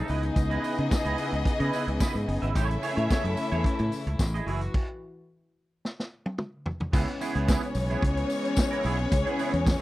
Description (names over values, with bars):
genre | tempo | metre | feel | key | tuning
disco | 110 BPM | 4/4 | straight | C# minor | A4 = 441 Hz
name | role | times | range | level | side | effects
warm studio violin section | second line | 0.0-9.8 s | B3 to E5 | -32 LUFS | left 2 dB | none
clean electric guitar | accompaniment | 0.0-9.7 s | A3 to E5 | -33 LUFS | right 6 dB | ensemble chorus
warm studio string section | sustained chords | 0.0-9.8 s | C#3 to F#4 | -33 LUFS | left 2 dB | none
fingered electric bass | bass | 0.1-9.7 s | F#1 to C#3 | -28 LUFS | equal | none
vintage drum kit | drums | 0.1-9.8 s | crash cymbal, hi-hat, kick drum, snare drum, toms | -26 LUFS | equal | none
tambourine | percussion | 0.1-9.8 s | none | -44 LUFS | left 10 dB | none
room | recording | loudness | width
little or no reverb | dry, close 1970s-style studio recording | -25 LUFS | side -16 dB against mid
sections
0.0-6.9 A section; 6.9-9.8 B section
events
stop 4.7-6.9; drum fill 5.8-6.9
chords
0.1 C#m9; 2.6 Amaj7; 4.5 F#m9; 5.8 N.C.; 6.9 C#m7